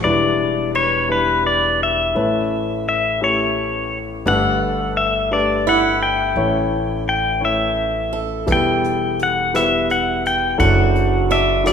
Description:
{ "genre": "acoustic folk-pop ballad", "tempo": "57 BPM (dotted quarters)", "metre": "6/8", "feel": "straight", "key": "unclear", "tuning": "A4 = 440 Hz", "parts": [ { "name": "pedal steel guitar", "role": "second line", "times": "0.0-11.7 s", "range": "B4 to G5", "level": "-18 LUFS", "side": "left 2 dB", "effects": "none" }, { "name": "warm grand piano", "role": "accompaniment", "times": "0.0-11.7 s", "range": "F#1 to C#5", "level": "-22 LUFS", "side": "left 2 dB", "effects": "none" }, { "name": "upright bass", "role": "bass", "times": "0.0-11.7 s", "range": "E1 to A1", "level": "-25 LUFS", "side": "right 1 dB", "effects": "none" }, { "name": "picked swing-style acoustic guitar", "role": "arpeggios", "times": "0.7-11.7 s", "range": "D4 to B4", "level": "-24 LUFS", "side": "right 7 dB", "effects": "none" }, { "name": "soft brush drum kit", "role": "drums", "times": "8.5-11.7 s", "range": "hi-hat, kick drum, rim click", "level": "-27 LUFS", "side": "right 1 dB", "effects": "none" } ], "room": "moderate scoring stage reverb, RT60 2.1 s", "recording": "recorded in a church or concert hall", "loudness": "-16 LUFS", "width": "side -7 dB against mid", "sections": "0.0-11.7 A section", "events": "pedal steel guitar solo 0.0-11.7", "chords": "0.0 Em7; 2.2 Aadd9; 4.3 Gadd9; 6.4 A; 8.5 Em; 10.6 Dadd9/F#" }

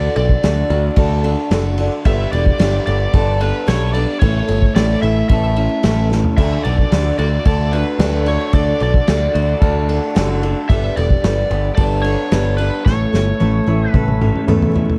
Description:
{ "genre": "folk rock and heartland rock", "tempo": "111 BPM", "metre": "4/4", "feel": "straight", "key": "D major", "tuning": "A4 = 439 Hz", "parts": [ { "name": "overdriven slide guitar", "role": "melody", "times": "0.0-14.4 s", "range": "B4 to E5", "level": "-25 LUFS", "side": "equal", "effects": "analog delay" }, { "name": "dark upright piano", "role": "accompaniment", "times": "0.0-14.9 s", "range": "C#4 to E5", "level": "-32 LUFS", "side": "equal", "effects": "none" }, { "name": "picked steel-string acoustic guitar", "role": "accompaniment", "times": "0.0-15.0 s", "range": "A2 to A4", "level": "-27 LUFS", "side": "equal", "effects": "none" }, { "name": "electric guitar through a small old amp", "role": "riff", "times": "0.0-15.0 s", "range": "A2 to A4", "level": "-25 LUFS", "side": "equal", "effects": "none" }, { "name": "picked electric bass", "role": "bass", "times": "0.0-14.9 s", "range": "E1 to E2", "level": "-20 LUFS", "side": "equal", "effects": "none" }, { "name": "unplugged drum kit", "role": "drums", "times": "0.2-15.0 s", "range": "crash cymbal, kick drum, ride cymbal, snare drum, toms", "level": "-21 LUFS", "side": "equal", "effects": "none" }, { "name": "bright tonewheel organ", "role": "sustained chords", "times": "6.4-15.0 s", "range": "A3 to A4", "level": "-34 LUFS", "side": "equal", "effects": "none" } ], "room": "light reverb", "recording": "dark, warm production, vinyl crackle", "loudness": "-16 LUFS", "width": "mono", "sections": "0.0-15.0 A section", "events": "drum fill 6.1, 12.9-15.0", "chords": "0.0 D; 2.1 Gadd9; 4.2 A; 6.4 D; 10.7 Gadd9; 12.9 A" }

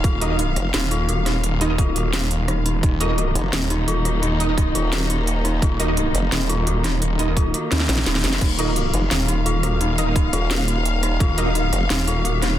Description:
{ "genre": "dark technical drum and bass", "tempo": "172 BPM", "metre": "4/4", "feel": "straight", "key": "unclear", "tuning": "A4 = 440 Hz", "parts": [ { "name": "dark chamber string section", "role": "sustained chords", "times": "0.0-12.6 s", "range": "Eb3 to F5", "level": "-27 LUFS", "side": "left 2 dB", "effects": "sidechain pumping" }, { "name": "dark detuned synth bell", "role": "arpeggios", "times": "0.0-12.6 s", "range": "Eb4 to Gb4", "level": "-27 LUFS", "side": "left 2 dB", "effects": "chorus, sidechain pumping, ping-pong delay" }, { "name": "formant-sweep wobble bass", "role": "bass", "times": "0.0-0.7, 3.4-11.9 s", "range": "Eb1 to Bb1", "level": "-22 LUFS", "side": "equal", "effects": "chorus" }, { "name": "snarling distorted saw bass", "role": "bass", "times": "0.0-12.6 s", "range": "Eb1 to Eb2", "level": "-22 LUFS", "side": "equal", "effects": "distortion, overdrive, sidechain pumping" }, { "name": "drum and bass drum kit", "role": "drums", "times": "0.0-12.5 s", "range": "crash cymbal, hi-hat, rim click, snare drum", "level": "-24 LUFS", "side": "right 1 dB", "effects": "none" }, { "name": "electronic kick drum", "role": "drums", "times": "0.0-11.3 s", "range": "none", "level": "-19 LUFS", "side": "equal", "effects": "overdrive" }, { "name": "orchestra-hit-like synth stab", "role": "stabs", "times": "0.2-11.5 s", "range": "Eb4 to Eb5", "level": "-28 LUFS", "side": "right 3 dB", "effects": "built-in reverb, ping-pong delay" } ], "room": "little or no reverb", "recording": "dense, heavily limited modern master", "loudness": "-18 LUFS", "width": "side -12 dB against mid", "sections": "0.0-12.6 A section", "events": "drum fill 7.7-8.4", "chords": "0.0 Eb5" }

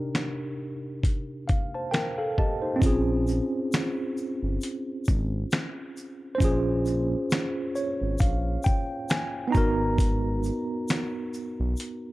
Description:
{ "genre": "lo-fi hip hop", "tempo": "67 BPM", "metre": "4/4", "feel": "swing 57% on 16ths", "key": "unclear", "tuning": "A4 = 439 Hz", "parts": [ { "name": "tine electric piano", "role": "accompaniment", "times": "0.0-12.1 s", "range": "C3 to Bb5", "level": "-28 LUFS", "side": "right 1 dB", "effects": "medium stereo tremolo" }, { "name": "dusty soul sampler-style drum kit", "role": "drums", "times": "0.1-12.0 s", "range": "finger snaps, hi-hat, kick drum, shaker, snare drum", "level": "-25 LUFS", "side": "equal", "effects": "none" }, { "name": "smooth synth bass", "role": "bass", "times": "2.8-11.8 s", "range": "G1 to Cb2", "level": "-28 LUFS", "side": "equal", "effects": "none" }, { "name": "egg shaker", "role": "percussion", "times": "2.8-12.0 s", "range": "none", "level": "-48 LUFS", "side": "left 4 dB", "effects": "none" } ], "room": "light reverb, digital ambience", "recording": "dark, warm production", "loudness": "-24 LUFS", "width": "side -18 dB against mid", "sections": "0.0-2.8 A section; 2.8-12.1 B section", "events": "tine electric piano fill 1.0-2.8", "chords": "0.0 Cm7; 2.8 Bbm7; 9.5 Abm7" }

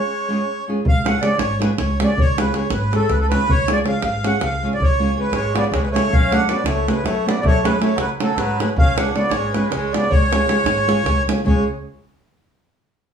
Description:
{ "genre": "balkan folk, Balkan wedding band", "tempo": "318 BPM (eighths)", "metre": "7/8", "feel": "straight", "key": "C# phrygian dominant", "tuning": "A4 = 439 Hz", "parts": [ { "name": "accordion", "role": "melody", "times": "0.0-11.6 s", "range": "A4 to F#5", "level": "-21 LUFS", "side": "right 1 dB", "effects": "light tremolo tuning" }, { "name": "mellow trumpet", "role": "second line", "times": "0.0-0.7, 5.3-11.6 s", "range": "F#3 to D4", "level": "-26 LUFS", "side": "equal", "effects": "none" }, { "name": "nylon-string guitar", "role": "accompaniment", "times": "0.3-11.6 s", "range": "G#3 to A4", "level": "-22 LUFS", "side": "right 1 dB", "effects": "none" }, { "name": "upright bass", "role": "bass", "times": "0.8-11.6 s", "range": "G#1 to G#2", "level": "-24 LUFS", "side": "equal", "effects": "none" }, { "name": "davul", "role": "percussion", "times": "0.9-11.6 s", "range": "none", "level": "-21 LUFS", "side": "equal", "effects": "none" } ], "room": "moderate studio reverb, RT60 0.7 s", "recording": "band playing live in one room, studio reverb", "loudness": "-16 LUFS", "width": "side -7 dB against mid", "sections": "0.9-11.4 A section; 11.4-12.8 B section", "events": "break 0.0-0.9", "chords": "0.0 C#; 6.1 F#m; 8.8 C#" }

